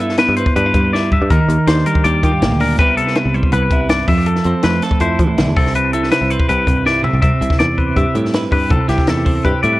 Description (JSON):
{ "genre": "math rock and midwest emo", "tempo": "162 BPM", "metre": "4/4", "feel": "straight", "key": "C major", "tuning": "A4 = 441 Hz", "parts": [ { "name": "twelve-string electric guitar", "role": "accompaniment", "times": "0.0-9.8 s", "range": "G2 to B4", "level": "-18 LUFS", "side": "right 2 dB", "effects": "spring reverb" }, { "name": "twangy electric guitar", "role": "arpeggios", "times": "0.0-9.8 s", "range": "G4 to E5", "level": "-18 LUFS", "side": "left 4 dB", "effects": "analog delay" }, { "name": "picked electric bass", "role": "bass", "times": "0.0-9.8 s", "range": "Bb1 to F3", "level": "-19 LUFS", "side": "equal", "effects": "none" }, { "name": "compact cocktail drum kit", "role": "drums", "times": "0.1-9.7 s", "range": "hi-hat, kick drum, snare drum, toms", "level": "-18 LUFS", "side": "equal", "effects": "none" } ], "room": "light reverb", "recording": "worn, warbling old tape, cassette tape, warbly pitch drift", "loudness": "-12 LUFS", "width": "side -17 dB against mid", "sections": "0.0-7.2 A section; 7.2-9.8 B section", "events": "drum fill 0.9-1.3, 6.9-7.2", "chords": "0.0 G13; 1.3 Ebmaj9; 2.8 Cmaj7; 4.1 Fmaj7; 5.6 Cmaj7; 7.2 Cmaj9" }